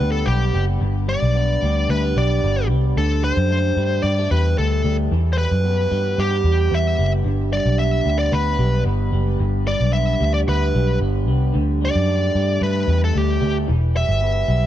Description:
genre	indie pop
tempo	112 BPM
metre	4/4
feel	straight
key	G major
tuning	A4 = 438 Hz
part	smooth overdriven lead guitar	melody	0.0-14.7 s	G4 to E5	-23 LUFS	equal	none
part	electric guitar through a small old amp	arpeggios	0.0-14.7 s	G2 to B3	-25 LUFS	equal	wide subtle chorus
part	vintage muted picked electric bass	bass	0.0-14.7 s	E1 to G2	-19 LUFS	equal	none
room	little or no reverb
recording	dark, warm production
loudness	-17 LUFS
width	side -12 dB against mid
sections	0.0-14.7 A section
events	none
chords	0.0 G; 3.0 Dsus4; 5.1 Em; 7.3 G; 11.5 Dsus4; 13.7 Em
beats	0.27 | 0.81 1.35 1.89 2.43 | 2.97 3.50 4.04 4.58 | 5.12 5.65 6.19 6.73 | 7.26 7.80 8.33 8.87 | 9.41 9.94 10.48 11.01 | 11.55 12.08 12.62 13.15 | 13.69 14.22

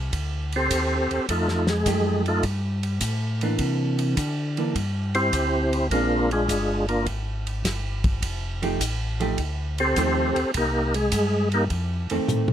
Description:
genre	soul jazz organ trio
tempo	104 BPM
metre	4/4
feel	swing 69% on 8ths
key	F mixolydian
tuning	A4 = 441 Hz
part	mellow tonewheel organ	bass	0.0-12.5 s	F1 to D3	-26 LUFS	equal	slow rotary speaker
part	warm soul drum kit	drums	0.1-12.5 s	hi-hat, kick drum, ride cymbal, snare drum, toms	-30 LUFS	equal	none
part	percussive tonewheel organ	melody	0.6-11.6 s	Ab3 to C5	-22 LUFS	equal	slow rotary speaker, overdrive, chorus vibrato
part	vintage hollow-body jazz guitar	accompaniment	1.9-12.5 s	Eb3 to G4	-26 LUFS	right 3 dB	none
room	light reverb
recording	close, detailed microphones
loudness	-22 LUFS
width	side -10 dB against mid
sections	0.0-12.5 A section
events	tonewheel organ solo 0.0-12.5; drum fill 12.3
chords	0.0 F9; 3.6 C9; 5.9 Bb9; 8.2 F9; 10.5 Cm7; 11.7 F7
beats	0.13 0.71 | 1.29 1.87 2.44 3.02 | 3.60 4.18 4.76 5.34 | 5.92 6.50 7.08 7.65 | 8.23 8.81 9.39 9.97 | 10.55 11.13 11.71 12.28

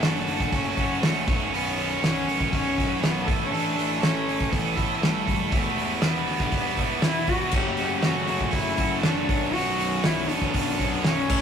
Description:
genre	quiet-loud alternative rock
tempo	120 BPM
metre	4/4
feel	straight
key	unclear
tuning	A4 = 439 Hz
part	dark cello	melody	0.0-11.4 s	G3 to G4	-29 LUFS	left 2 dB	none
part	overdriven electric guitar	riff	0.0-11.4 s	B1 to A4	-27 LUFS	right 6 dB	none
part	thick fuzz guitar	riff	0.0-11.4 s	B1 to A4	-32 LUFS	left 7 dB	distortion
part	fuzz picked electric bass	bass	0.0-11.4 s	B0 to D2	-34 LUFS	equal	overdrive
part	loose indie drum kit	drums	0.0-11.4 s	crash cymbal, hi-hat, kick drum, snare drum	-26 LUFS	equal	none
part	distorted electric guitar	riff	7.5-11.4 s	B1 to A3	-34 LUFS	left 1 dB	distortion
room	light reverb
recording	rough rehearsal-room recording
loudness	-22 LUFS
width	side -8 dB against mid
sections	0.0-11.4 A section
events	none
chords	0.0 F#m; 1.3 Bsus2; 3.3 Asus2; 5.5 Em; 7.5 F#m; 9.3 Bmadd9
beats	0.01 0.52 1.02 | 1.52 2.02 2.52 3.02 | 3.52 4.02 4.52 5.02 | 5.53 6.03 6.53 7.03 | 7.53 8.04 8.54 9.04 | 9.54 10.04 10.55 11.05

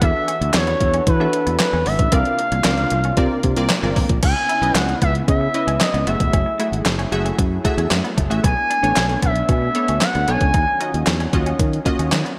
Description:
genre	early-eighties boogie funk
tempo	114 BPM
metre	4/4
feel	straight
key	C# phrygian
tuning	A4 = 437 Hz
part	expressive portamento lead	melody	0.0-11.0 s	B4 to G#5	-23 LUFS	equal	chorus
part	funky polysynth comp	accompaniment	0.0-12.2 s	A3 to E5	-28 LUFS	equal	chorus
part	warm analog pad	sustained chords	0.0-12.4 s	C3 to E#5	-32 LUFS	equal	lush chorus
part	semi-hollow electric guitar	riff	0.0-12.3 s	G#3 to E4	-34 LUFS	equal	none
part	fingered electric bass	bass	0.0-12.2 s	E1 to E3	-24 LUFS	equal	none
part	clean 12-bit digital drum machine	drums	0.0-12.4 s	crash cymbal, handclaps, hi-hat, kick drum, snare drum	-22 LUFS	equal	gated reverb
room	moderate lush hall reverb, RT60 1.8 s, digital ambience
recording	bright 1980s-style digital production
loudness	-18 LUFS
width	mono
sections	0.0-4.2 A section; 4.2-12.4 B section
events	none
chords	0.0 E9sus4; 2.1 C9sus4; 4.2 C#m9; 6.1 F#m9; 8.4 Bm9; 10.5 D#m9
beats	| 0.02 0.54 1.07 1.60 | 2.12 2.65 3.18 3.70 | 4.23 4.75 5.28 5.81 | 6.33 6.86 7.39 7.91 | 8.44 8.97 9.49 10.02 | 10.54 11.07 11.60 12.12

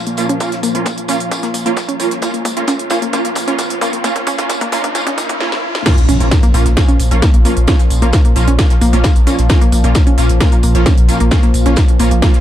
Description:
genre	driving peak-time techno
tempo	132 BPM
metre	4/4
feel	straight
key	Bb minor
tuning	A4 = 440 Hz
part	analog drone	drone	0.0-12.4 s	Bb2 to F3	-23 LUFS	left 1 dB	chorus, sidechain pumping
part	riser, swell and impact	sound effects	1.3-7.7 s	none	-25 LUFS	equal	none
part	warbly dusty pluck	riff	0.1-12.3 s	Bb3 to Db4	-20 LUFS	equal	chorus, overdrive, sidechain pumping, dub echo
part	techno drum kit	drums	0.1-12.4 s	crash cymbal, hi-hat, snare drum	-21 LUFS	equal	none
part	rave stab	stabs	0.2-12.4 s	Bb3 to F4	-20 LUFS	right 2 dB	chorus, built-in reverb, sidechain pumping, tape echo
part	soft brush drum kit	drums	0.2-12.4 s	hi-hat, snare drum, tambourine	-29 LUFS	left 2 dB	high-pass filter on hats, high-pass filter on snare, high-pass filter on perc, high-pass filter on room
part	electronic kick drum	drums	0.4-12.3 s	none	-13 LUFS	equal	high-pass filter on kick, high-pass filter on room
part	saturated sub bass	bass	6.1-12.2 s	Bb1	-13 LUFS	equal	tube saturation, sidechain pumping, low-pass filter
room	light reverb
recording	dark, warm production, high-pass filter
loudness	-11 LUFS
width	side -12 dB against mid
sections	0.0-5.9 A section; 5.9-12.4 B section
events	build-up 0.0-5.9; drum fill 0.0-5.4, 5.4-5.9; filter sweep on synth arpeggio sound 0.0-5.9; filter sweep on synth stab 0.0-5.9; riser 1.3-5.9; swell 5.0-5.9; drop 5.9-12.4; impact 5.9-7.7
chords	0.0 Bbm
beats	| 0.41 0.86 1.31 1.77 | 2.22 2.68 3.13 3.59 | 4.04 4.50 4.95 5.41 | 5.86 6.31 6.77 7.22 | 7.68 8.13 8.59 9.04 | 9.50 9.95 10.40 10.86 | 11.31 11.77 12.22

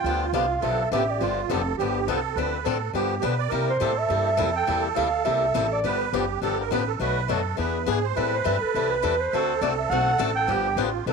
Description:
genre	acoustic string swing (jazz manouche)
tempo	207 BPM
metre	4/4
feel	swing 58% on 8ths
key	G mixolydian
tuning	A4 = 440 Hz
part	growling clarinet	melody	0.0-1.4, 3.7-6.0, 8.4-10.9 s	A4 to G5	-25 LUFS	right 2 dB	slapback echo
part	musette accordion	second line	0.0-11.1 s	F4 to D5	-27 LUFS	right 12 dB	none
part	picked swing-style acoustic guitar	accompaniment	0.0-11.1 s	B2 to A4	-28 LUFS	left 14 dB	none
part	upright bass	bass	0.0-11.1 s	F1 to C3	-30 LUFS	equal	none
room	light reverb, small room ambience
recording	1960s-style stereo with parts hard left and right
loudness	-22 LUFS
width	side -5 dB against mid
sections	0.0-11.1 A section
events	none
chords	0.0 G7; 2.4 Dm7; 2.9 G7; 3.5 C7; 5.8 G7; 7.0 Bm7; 7.6 E7; 8.2 Am7; 9.3 D7; 10.5 G7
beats	| 0.05 0.34 0.63 0.92 | 1.21 1.50 1.78 2.07 | 2.36 2.65 2.94 3.23 | 3.52 3.81 4.10 4.39 | 4.68 4.97 5.26 5.55 | 5.84 6.13 6.42 6.71 | 7.00 7.29 7.58 7.88 | 8.16 8.46 8.75 9.04 | 9.33 9.62 9.91 10.20 | 10.49 10.78 11.07

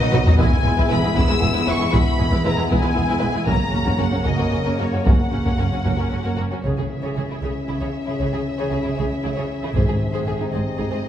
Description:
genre	cinematic, epic orchestral film score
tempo	77 BPM (dotted quarters)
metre	6/8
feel	straight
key	C# dorian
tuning	A4 = 440 Hz
part	warm symphonic violin section	melody	0.0-11.1 s	C#5 to E6	-27 LUFS	left 3 dB	none
part	warm symphonic violin section	second line	0.0-11.0 s	B3 to C#5	-29 LUFS	left 2 dB	none
part	warm symphonic viola section	accompaniment	0.0-11.0 s	F#3 to G#4	-27 LUFS	right 1 dB	none
part	mellow French horn section	sustained chords	0.0-11.1 s	B#2 to C#4	-27 LUFS	left 2 dB	none
part	rich symphonic cello section	bass	0.0-11.0 s	E2 to C#3	-26 LUFS	right 2 dB	none
part	taiko ensemble	drums	0.0-10.7 s	none	-20 LUFS	equal	none
part	warm studio double bass section	bass	0.1-10.8 s	E1 to C#2	-26 LUFS	right 2 dB	none
part	timpani	percussion	6.6-7.4, 9.8-10.5 s	G#2 to C#3	-28 LUFS	left 1 dB	none
room	wet recital hall reverb, RT60 1.6 s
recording	recorded in a church or concert hall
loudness	-18 LUFS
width	side -10 dB against mid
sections	0.0-6.6 A section; 6.6-11.1 B section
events	drum fill 0.0-0.4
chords	0.4 E; 3.5 F#; 6.6 C#m; 9.8 G#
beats	| 0.39 1.17 | 1.94 2.71 | 3.48 4.26 | 5.06 5.86 | 6.65 7.43 | 8.21 8.98 | 9.76 10.53

